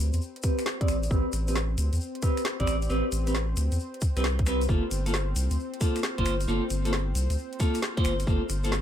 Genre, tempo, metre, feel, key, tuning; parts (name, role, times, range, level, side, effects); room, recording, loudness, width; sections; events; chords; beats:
UK garage, two-step garage; 134 BPM; 4/4; swing 67% on 16ths; A phrygian; A4 = 438 Hz
warm analog pad; sustained chords; 0.0-8.8 s; C4 to C5; -39 LUFS; left 2 dB; chorus, sidechain pumping
saturated sub bass; bass; 0.0-8.8 s; G1 to E2; -27 LUFS; equal
garage drum kit; drums; 0.1-8.8 s; finger snaps, hi-hat, snare drum; -33 LUFS; equal
tube shaker; percussion; 0.1-8.8 s; -40 LUFS; left 4 dB
clean electric guitar; stabs; 0.4-8.7 s; Bb3 to D5; -30 LUFS; equal; spring reverb, low-pass filter
electronic kick drum; drums; 0.4-8.4 s; -26 LUFS; equal
little or no reverb; -25 LUFS; side -10 dB against mid
0.0-8.8 A section
filter sweep on clean electric guitar 0.0-8.8
0.0 Am9; 4.7 Gm9
0.21 0.66 | 1.11 1.55 2.00 2.45 | 2.90 3.35 3.79 4.24 | 4.69 5.14 5.58 6.03 | 6.48 6.93 7.38 7.82 | 8.27 8.72